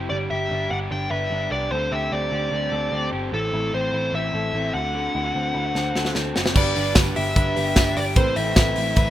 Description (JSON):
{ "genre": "jangly indie pop", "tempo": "149 BPM", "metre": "4/4", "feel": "straight", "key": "G major", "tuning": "A4 = 437 Hz", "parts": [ { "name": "raw garage guitar", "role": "accompaniment", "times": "0.0-9.1 s", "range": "G2 to B4", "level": "-32 LUFS", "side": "right 6 dB", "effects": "overdrive, plate reverb" }, { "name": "electric guitar through a small old amp", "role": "arpeggios", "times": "0.0-9.1 s", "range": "A2 to C5", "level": "-29 LUFS", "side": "left 3 dB", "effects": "lush chorus, slapback echo, plate reverb" }, { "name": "vintage muted picked electric bass", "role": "bass", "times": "0.0-9.1 s", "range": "F#1 to D2", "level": "-28 LUFS", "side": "equal", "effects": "none" }, { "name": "fuzz lead guitar", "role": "melody", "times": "0.1-9.1 s", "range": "A4 to G5", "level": "-25 LUFS", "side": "equal", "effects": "distortion, slapback echo, plate reverb" }, { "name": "modern studio drum kit", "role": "drums", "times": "5.8-9.1 s", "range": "crash cymbal, hi-hat, kick drum, ride cymbal, snare drum", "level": "-20 LUFS", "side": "equal", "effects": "none" }, { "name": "warm analog keys", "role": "accompaniment", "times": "6.5-9.1 s", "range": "C4 to B4", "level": "-30 LUFS", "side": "right 3 dB", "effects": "chorus, plate reverb" }, { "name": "tambourine", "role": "percussion", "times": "6.8-9.1 s", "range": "none", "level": "-39 LUFS", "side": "left 3 dB", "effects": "none" } ], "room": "light reverb", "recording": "rough home demo mix", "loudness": "-20 LUFS", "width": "side -13 dB against mid", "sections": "0.0-6.6 A section; 6.6-9.1 B section", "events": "drum fill 5.8-6.6", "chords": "0.1 G; 1.7 D7sus4; 3.3 Am; 4.7 D7; 6.6 G; 8.2 Amadd9" }